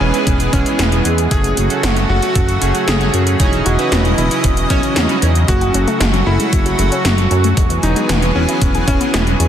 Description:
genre	synthwave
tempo	115 BPM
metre	4/4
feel	straight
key	F# dorian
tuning	A4 = 440 Hz
part	bright electric grand piano	melody	0.0-9.5 s	C#4 to G#4	-22 LUFS	equal	digital delay
part	lush unison pad	sustained chords	0.0-9.5 s	C#3 to D#5	-19 LUFS	equal	chorus, sidechain pumping
part	chorused polysynth	stabs	0.0-5.3 s	G#3 to C#5	-22 LUFS	right 4 dB	digital delay
part	chorused synth bass	bass	0.0-9.5 s	E1 to F#2	-16 LUFS	equal	none
part	80s electronic pad drums	drums	0.1-9.5 s	hi-hat, snare drum	-20 LUFS	equal	overdrive
part	electronic kick drum	drums	0.3-9.0 s	none	-17 LUFS	equal	none
part	warbly dusty pluck	arpeggios	5.6-9.3 s	E3 to G#4	-23 LUFS	left 4 dB	chorus, digital delay
room	light reverb, digital ambience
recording	dense, heavily limited modern master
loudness	-12 LUFS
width	side -10 dB against mid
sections	0.0-9.5 A section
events	none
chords	0.0 E; 1.3 F#madd9; 3.4 C#madd9/E; 5.5 F#m; 7.6 E

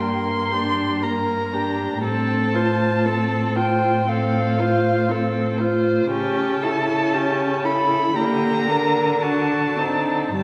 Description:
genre	classical, slow romantic movement for string quartet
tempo	59 BPM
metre	4/4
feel	rubato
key	G minor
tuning	A4 = 440 Hz
part	muted violin	melody	0.0-10.4 s	F5 to C6	-26 LUFS	equal	none
part	muted violin	second line	0.0-10.4 s	Eb4 to C5	-28 LUFS	equal	none
part	muted viola	accompaniment	0.0-10.4 s	G3 to F4	-26 LUFS	equal	none
part	muted cello	bass	0.0-10.4 s	G2 to D3	-27 LUFS	equal	none
room	wet recital hall reverb, RT60 1.7 s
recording	recorded in a church or concert hall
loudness	-21 LUFS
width	mono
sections	0.0-10.4 A section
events	none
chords	0.0 Gm; 2.0 F/A; 6.1 A7/C#; 8.2 Gm/D; 9.2 D7b9

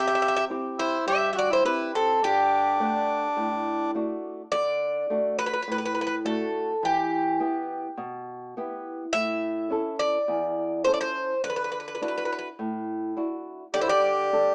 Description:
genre	greek folk, Greek bouzouki band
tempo	104 BPM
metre	4/4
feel	straight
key	unclear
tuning	A4 = 440 Hz
part	Greek bouzouki	melody	0.0-14.5 s	G4 to E5	-28 LUFS	equal	none
part	accordion	second line	0.0-3.9, 13.7-14.5 s	C4 to G4	-29 LUFS	equal	none
part	flamenco guitar	accompaniment	0.0-14.5 s	E2 to F#5	-33 LUFS	equal	none
room	light reverb, studio reverb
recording	rough home demo mix, small speaker sound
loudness	-26 LUFS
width	mono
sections	0.0-4.5 A section; 4.5-14.5 A section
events	none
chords	0.0 C; 2.2 D; 6.8 Em; 9.1 A; 11.4 Dadd9; 13.7 Dsus4

